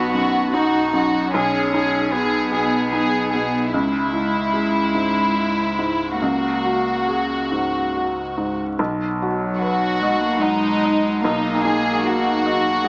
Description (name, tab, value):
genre	neoclassical piano and strings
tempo	74 BPM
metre	3/4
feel	rubato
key	B major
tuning	A4 = 440 Hz
part	rich studio violin section	melody	0.0-12.9 s	D#4 to G#4	-21 LUFS	equal	tape echo
part	rich cello	second line	0.0-12.9 s	F#3 to D#4	-23 LUFS	equal	none
part	felt-muted upright piano	accompaniment	0.0-12.9 s	B1 to F#5	-22 LUFS	equal	none
part	pure sine sub bass	bass	0.0-12.9 s	B1 to C#2	-39 LUFS	equal	none
part	phased analog pad	sustained chords	8.8-12.9 s	F#3 to B4	-32 LUFS	equal	none
room	moderate spring reverb, RT60 1.5 s, small room ambience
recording	vinyl crackle, small speaker sound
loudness	-17 LUFS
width	side -32 dB against mid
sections	0.0-8.8 A section; 8.8-12.9 A section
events	none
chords	0.0 B; 1.3 G#m/B; 3.7 C#m; 6.2 F#add9/C#; 8.8 B; 11.2 G#madd9/B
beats	0.55 | 1.34 2.14 2.94 | 3.73 4.54 5.36 | 6.21 7.08 7.94 | 8.79 9.61 10.42 | 11.23 12.04 12.85